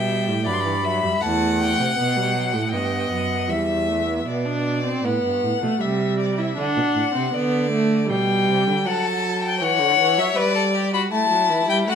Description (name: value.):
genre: classical, baroque-style fugue for string quartet.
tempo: 79 BPM.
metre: 3/4.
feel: straight.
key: G major from 4.3 s.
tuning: A4 = 440 Hz.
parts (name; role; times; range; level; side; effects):
rich violin; melody; 0.0-11.9 s; D5 to C6; -23 LUFS; left 7 dB; none.
rich violin; second line; 0.0-4.3, 8.9-11.9 s; E4 to F#5; -24 LUFS; left 3 dB; none.
warm viola; accompaniment; 0.0-11.9 s; D3 to E4; -23 LUFS; right 2 dB; none.
warm cello; bass; 0.0-8.7 s; E2 to D3; -25 LUFS; right 4 dB; none.
room: wet stone room reverb, RT60 1.1 s.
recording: none.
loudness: -19 LUFS.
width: side -7 dB against mid.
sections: 0.0-4.3 A section; 4.3-11.9 B section.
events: none.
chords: 0.0 Em; 1.2 F#m7/E; 2.0 B7; 3.5 Em; 4.3 G/B; 5.8 Cadd9; 6.6 D7; 8.1 G/B; 8.9 D/F#; 10.4 Gmaj7; 11.1 A5.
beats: 0.46 1.22 | 1.98 2.73 3.50 | 4.27 5.05 5.81 | 6.57 7.34 8.10 | 8.85 9.61 10.37 | 11.12 11.88.